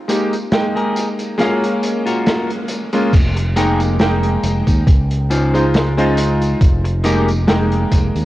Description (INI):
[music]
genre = vaporwave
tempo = 69 BPM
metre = 4/4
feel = swing 54% on 16ths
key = F minor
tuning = A4 = 440 Hz
[part]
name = clear electric grand piano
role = accompaniment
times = 0.1-8.2 s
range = Ab3 to G5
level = -18 LUFS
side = equal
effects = lush chorus, analog delay
[part]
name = vintage drum kit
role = drums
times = 0.1-8.2 s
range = crash cymbal, hi-hat, snare drum, tambourine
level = -22 LUFS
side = equal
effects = none
[part]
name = clean electric guitar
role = riff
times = 0.8-7.5 s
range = Db4 to Eb5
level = -23 LUFS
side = left 1 dB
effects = lush chorus, analog delay
[part]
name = overdriven fingered electric bass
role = bass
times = 3.1-8.2 s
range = F1 to Eb2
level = -17 LUFS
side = equal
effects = none
[part]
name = electronic kick drum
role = drums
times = 3.1-8.1 s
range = none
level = -12 LUFS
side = equal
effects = none
[sound]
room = light reverb, small room ambience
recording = worn, warbling old tape, cassette tape, warbly pitch drift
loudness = -14 LUFS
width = side -16 dB against mid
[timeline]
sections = 0.0-3.1 A section; 3.1-8.2 B section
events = break 0.0-3.1; band accent 2.3-2.7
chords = 0.0 Abmaj7sus2; 1.4 Gbmaj7; 3.1 Fm11; 4.9 Dbmaj9; 6.6 Fm11